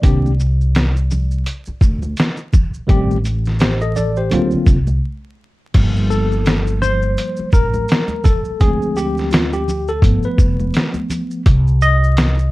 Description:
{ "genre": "hip hop, jazz-hop", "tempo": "84 BPM", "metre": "4/4", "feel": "swing 59% on 16ths", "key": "G minor", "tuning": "A4 = 440 Hz", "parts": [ { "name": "tine electric piano", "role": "accompaniment", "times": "0.0-12.5 s", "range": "D3 to Eb5", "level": "-19 LUFS", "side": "left 1 dB", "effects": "overdrive, fast stereo tremolo" }, { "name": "upright bass", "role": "bass", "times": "0.0-12.5 s", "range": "F1 to D2", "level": "-17 LUFS", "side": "equal", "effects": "none" }, { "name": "trip hop sampler-style drum kit", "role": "drums", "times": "0.0-12.4 s", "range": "crash cymbal, hi-hat, kick drum, shaker, snare drum", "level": "-15 LUFS", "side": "equal", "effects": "none" }, { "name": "maracas and congas", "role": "percussion", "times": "0.1-12.5 s", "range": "none", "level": "-29 LUFS", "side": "right 2 dB", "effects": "none" } ], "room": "light reverb", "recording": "vinyl crackle", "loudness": "-14 LUFS", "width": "side -19 dB against mid", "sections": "0.0-5.8 A section; 5.8-12.5 B section", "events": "break 5.0-5.8; tine electric piano solo 5.8-12.5", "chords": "0.0 Csus2; 2.9 Am7b5; 4.3 D7alt; 5.8 Gm9; 8.6 Dm7b5; 10.0 G7; 11.5 Cm", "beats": "| 0.04 0.75 1.47 2.18 | 2.89 3.61 4.32 5.04 | 5.75 6.46 7.18 7.89 | 8.61 9.32 10.04 10.75 | 11.46 12.18" }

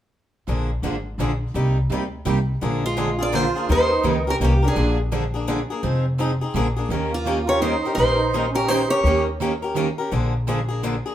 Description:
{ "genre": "acoustic string swing (jazz manouche)", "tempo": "168 BPM", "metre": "3/4", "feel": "swing 62% on 8ths", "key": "Bb mixolydian", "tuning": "A4 = 440 Hz", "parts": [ { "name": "picked steel-string acoustic guitar", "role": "accompaniment", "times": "0.5-10.9 s", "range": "C3 to Bb4", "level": "-28 LUFS", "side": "right 6 dB", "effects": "none" }, { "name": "picked swing-style acoustic guitar", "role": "accompaniment", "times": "0.5-11.1 s", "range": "C3 to Bb4", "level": "-26 LUFS", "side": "left 4 dB", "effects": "none" }, { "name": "upright bass", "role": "bass", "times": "0.5-11.0 s", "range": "F1 to Eb2", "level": "-23 LUFS", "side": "equal", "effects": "none" }, { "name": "musette accordion", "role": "second line", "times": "2.8-5.0, 7.1-9.2 s", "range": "Ab3 to G4", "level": "-26 LUFS", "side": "right 4 dB", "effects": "none" }, { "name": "picked steel-string acoustic guitar", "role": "melody", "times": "2.9-5.0, 7.1-9.2 s", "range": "F4 to D5", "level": "-22 LUFS", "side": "equal", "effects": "none" } ], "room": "moderate large studio reverb, RT60 0.8 s", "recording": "band playing live in one room", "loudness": "-19 LUFS", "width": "side -11 dB against mid", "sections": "0.5-2.6 A section; 2.6-11.1 B section", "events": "none", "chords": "0.5 Bb7; 1.5 Cm9; 2.6 Bb7; 3.7 Eb7; 4.8 Bb7; 5.8 Fm7; 6.5 Bb7; 6.9 Eb7; 10.1 Bb7", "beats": "| 0.48 0.83 1.19 | 1.55 1.90 2.26 | 2.62 2.97 3.33 | 3.69 4.04 4.40 | 4.76 5.11 5.47 | 5.83 6.18 6.54 | 6.90 7.25 7.61 | 7.97 8.32 8.68 | 9.04 9.39 9.75 | 10.11 10.47 10.82" }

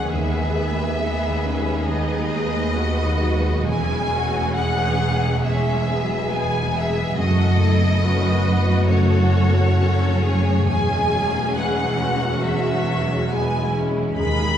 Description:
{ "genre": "cinematic, emotional film score for orchestra", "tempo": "68 BPM", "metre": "4/4", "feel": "rubato", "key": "C# minor", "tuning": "A4 = 440 Hz", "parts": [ { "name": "warm symphonic violin section", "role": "melody", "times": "0.0-14.6 s", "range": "C#5 to B5", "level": "-26 LUFS", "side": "left 1 dB", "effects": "none" }, { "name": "warm symphonic violin section", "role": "second line", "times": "0.0-14.6 s", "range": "E4 to B4", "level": "-27 LUFS", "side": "left 1 dB", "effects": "none" }, { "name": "felt-muted upright piano", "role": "accompaniment", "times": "0.0-14.6 s", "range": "D#2 to B3", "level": "-26 LUFS", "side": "left 2 dB", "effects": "none" }, { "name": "warm symphonic viola section", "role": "accompaniment", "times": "0.0-14.6 s", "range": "E3 to D#4", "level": "-28 LUFS", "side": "equal", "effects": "none" }, { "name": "rich symphonic double bass section", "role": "bass", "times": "0.0-14.6 s", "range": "E1 to D#2", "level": "-25 LUFS", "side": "right 2 dB", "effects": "none" }, { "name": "warm symphonic cello section", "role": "bass", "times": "0.0-14.6 s", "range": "D#2 to F#2", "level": "-23 LUFS", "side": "right 1 dB", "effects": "none" } ], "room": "wet concert hall reverb, RT60 2.1 s", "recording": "recorded in a church or concert hall, small room ambience", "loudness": "-18 LUFS", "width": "side -9 dB against mid", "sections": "0.0-14.6 A section", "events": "none", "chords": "0.1 G#m/D#; 3.7 C#m/E; 7.2 F#m; 10.7 C#m/E", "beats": "| 0.10 0.98 1.87 2.76 | 3.68 4.56 5.43 6.31 | 7.18 8.04 8.90 9.78 | 10.69 11.57 12.44 13.31 | 14.19" }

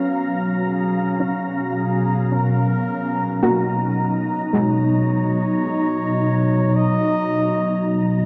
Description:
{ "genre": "ambient", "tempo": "54 BPM", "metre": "4/4", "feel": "straight", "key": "B lydian", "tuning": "A4 = 438 Hz", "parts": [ { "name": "glassy FM pad", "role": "sustained chords", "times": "0.0-8.3 s", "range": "B2 to A#5", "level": "-21 LUFS", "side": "equal", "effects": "ensemble chorus, built-in reverb" }, { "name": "mellow flugelhorn", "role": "melody", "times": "0.7-8.3 s", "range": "F#4 to D#5", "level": "-30 LUFS", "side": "equal", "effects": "analog delay" }, { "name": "soft round pluck", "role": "arpeggios", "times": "1.2-6.9 s", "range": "G#3 to F#4", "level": "-26 LUFS", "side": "equal", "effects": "ensemble chorus, analog delay" } ], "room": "wet plate reverb, RT60 3.4 s", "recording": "echo-heavy mix", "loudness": "-20 LUFS", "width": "mono", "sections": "0.1-8.3 A section", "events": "fade-in on flugelhorn 0.1-8.3", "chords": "0.1 Bmaj7", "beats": "| 0.11 1.22 2.33 3.44 | 4.55 5.66 6.77 7.88" }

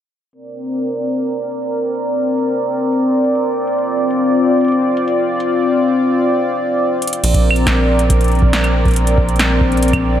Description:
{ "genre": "IDM", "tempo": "139 BPM", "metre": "4/4", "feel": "straight", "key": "Bb major", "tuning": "A4 = 438 Hz", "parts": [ { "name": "warm analog pad", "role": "sustained chords", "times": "0.3-10.2 s", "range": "C4 to D5", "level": "-15 LUFS", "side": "left 1 dB", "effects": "chorus" }, { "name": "electro analog drum machine", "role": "drums", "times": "0.3-10.0 s", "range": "claves, crash cymbal, hi-hat, snare drum", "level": "-20 LUFS", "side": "equal", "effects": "none" }, { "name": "rubbery square bass", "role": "bass", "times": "7.2-10.2 s", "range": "Bb1", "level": "-15 LUFS", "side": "equal", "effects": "none" }, { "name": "electronic kick drum", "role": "drums", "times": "7.3-10.0 s", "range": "none", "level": "-17 LUFS", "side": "equal", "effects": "none" } ], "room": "wet cathedral reverb, RT60 6.4 s", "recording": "dreamy mix soaked in reverb, low-pass filter", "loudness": "-13 LUFS", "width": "side -10 dB against mid", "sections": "0.3-7.2 A section; 7.2-10.2 B section", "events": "filter sweep 0.3-7.2; drum fill 7.0", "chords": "0.3 Bbadd9; 3.8 Dm7; 7.2 Bbadd9", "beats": "| 0.33 0.76 1.19 1.62 | 2.06 2.49 2.92 3.35 | 3.78 4.21 4.65 5.08 | 5.51 5.94 6.37 6.80 | 7.24 7.67 8.10 8.53 | 8.96 9.39 9.83" }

